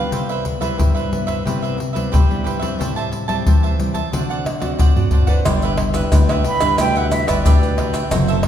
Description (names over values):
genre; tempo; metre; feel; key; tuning
samba and choro; 90 BPM; 4/4; straight; G major; A4 = 440 Hz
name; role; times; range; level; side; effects
cavaquinho; accompaniment; 0.0-8.5 s; D4 to A5; -24 LUFS; right 4 dB; none
nylon-string guitar; accompaniment; 0.0-8.5 s; G2 to B4; -24 LUFS; left 2 dB; none
surdo, pandeiro, tamborim and maracas; percussion; 0.1-8.5 s; none; -17 LUFS; left 1 dB; none
fingered electric bass; bass; 5.5-8.5 s; F#1 to G2; -21 LUFS; equal; none
breathy concert flute; melody; 6.5-7.8 s; D5 to B5; -21 LUFS; right 4 dB; none
room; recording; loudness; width
wet recital hall reverb, RT60 1.8 s; recorded in a church or concert hall; -15 LUFS; side -10 dB against mid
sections
0.0-5.5 A section; 5.5-8.5 B section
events
drum fill 4.5-5.5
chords
0.1 Cmaj7; 2.8 Am7; 4.1 D7; 5.5 G6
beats
| 0.11 0.78 1.45 2.12 | 2.79 3.46 4.12 4.79 | 5.46 6.12 6.79 7.45 | 8.12